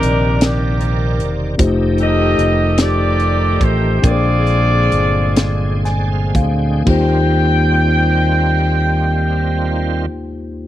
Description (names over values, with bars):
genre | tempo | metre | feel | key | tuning
slow gospel | 38-51 BPM (dotted quarters) | 6/8 | straight | Eb major | A4 = 440 Hz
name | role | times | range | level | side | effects
warm horn section | melody | 0.0-10.1 s | Bb3 to G5 | -19 LUFS | left 1 dB | none
mellow tine electric piano | accompaniment | 0.0-10.7 s | Eb2 to Ab5 | -20 LUFS | left 2 dB | none
bright tonewheel organ | sustained chords | 0.0-10.1 s | D3 to G5 | -24 LUFS | right 5 dB | slow rotary speaker, overdrive, chorus vibrato
fingered electric bass | bass | 0.0-10.1 s | Fb1 to Eb2 | -16 LUFS | right 1 dB | none
tight funk drum kit | drums | 0.0-7.1 s | crash cymbal, hi-hat, kick drum, snare drum | -16 LUFS | equal | none
room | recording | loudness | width
small room ambience | dry, close 1970s-style studio recording | -13 LUFS | side -13 dB against mid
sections
0.0-6.9 A section; 6.9-10.0 B section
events
slowing down 1.6-6.9; tine electric piano fill 5.4-6.9; tonewheel organ fill 5.4-6.9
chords
0.0 Cm9; 1.6 F13; 4.0 Bb13; 6.9 Eb69